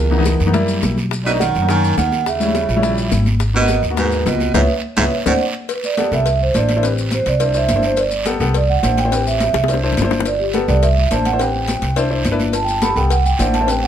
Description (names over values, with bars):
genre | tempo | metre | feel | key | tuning
Afro-Cuban jazz | 210 BPM | 4/4 | straight | B major | A4 = 442 Hz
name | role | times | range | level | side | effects
vibraphone with soft mallets | melody | 0.0-13.9 s | G4 to B5 | -19 LUFS | right 5 dB | none
clear baritone saxophone | second line | 0.0-5.3 s | E2 to D#3 | -22 LUFS | right 1 dB | none
upright bass | bass | 0.0-13.9 s | G1 to F#2 | -19 LUFS | equal | none
warm baby grand piano | accompaniment | 0.1-13.9 s | E3 to C5 | -22 LUFS | left 4 dB | none
bongos and cowbell | percussion | 0.1-13.8 s | none | -27 LUFS | left 8 dB | none
congas | percussion | 0.1-13.9 s | none | -25 LUFS | left 1 dB | none
guiro | percussion | 0.3-13.9 s | none | -30 LUFS | right 4 dB | none
maracas | percussion | 0.3-13.8 s | none | -32 LUFS | left 5 dB | none
room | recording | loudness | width
light reverb | none | -14 LUFS | side -9 dB against mid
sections
0.0-5.7 A section; 5.7-13.9 B section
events
band accent 4.5-5.7; drum fill 5.3-5.7, 9.5-10.3; vibraphone solo 5.7-13.9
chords
0.0 C#m9; 0.5 F#7b9; 1.1 Bmaj9; 2.3 D#7b9; 3.4 G#m9; 4.5 C#m7; 5.1 D7(no3); 5.7 Gadd9; 6.3 Cadd9; 6.8 Am7; 7.4 Cadd9; 8.0 Gadd9; 8.5 Cadd9; 9.1 Am7; 9.7 Cadd9; 10.3 Gadd9; 10.8 Cadd9; 11.4 Am7; 12.0 Cadd9; 12.5 Gadd9; 13.1 Cadd9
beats
0.26 0.54 0.83 | 1.11 1.40 1.69 1.97 | 2.26 2.55 2.83 3.12 | 3.40 3.69 3.98 4.26 | 4.55 4.83 5.12 5.41 | 5.69 5.98 6.26 6.55 | 6.83 7.12 7.40 7.69 | 7.97 8.26 8.55 8.83 | 9.12 9.40 9.69 9.97 | 10.26 10.54 10.83 11.11 | 11.40 11.68 11.97 12.25 | 12.54 12.82 13.11 13.39 | 13.68